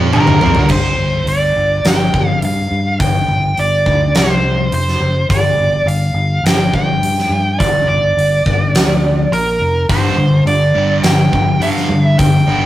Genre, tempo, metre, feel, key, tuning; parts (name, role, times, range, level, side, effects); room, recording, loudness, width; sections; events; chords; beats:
hard rock; 104 BPM; 4/4; straight; G minor; A4 = 439 Hz
distorted electric guitar; riff; 0.0-0.7 s; G2 to F4; -23 LUFS; right 2 dB
overdriven semi-hollow guitar; riff; 0.0-0.7, 9.9-12.7 s; G2 to F4; -23 LUFS; left 2 dB
sludgy distorted guitar; riff; 0.0-0.7, 9.9-12.7 s; G2 to F4; -15 LUFS; right 1 dB; overdrive
fingered electric bass; bass; 0.0-12.7 s; F1 to G2; -17 LUFS; equal
nasal lead guitar with a parked wah; melody; 0.1-12.7 s; Bb4 to G5; -16 LUFS; right 1 dB; overdrive
huge arena drum kit; drums; 0.1-12.3 s; crash cymbal, hi-hat, kick drum, snare drum, toms; -16 LUFS; equal
moderate stone room reverb, RT60 1.4 s; rough rehearsal-room recording, warm saturation; -11 LUFS; side -14 dB against mid
0.7-12.7 A section
drum fill 0.0-0.7
0.0 Gm; 0.7 G5; 4.1 N.C.; 4.7 F5; 5.3 G5; 8.7 N.C.; 9.3 Bb5; 9.9 G5
0.14 | 0.71 1.28 1.85 2.43 | 3.00 3.58 4.15 4.72 | 5.30 5.87 6.45 7.02 | 7.59 8.17 8.74 9.31 | 9.89 10.46 11.04 11.61 | 12.19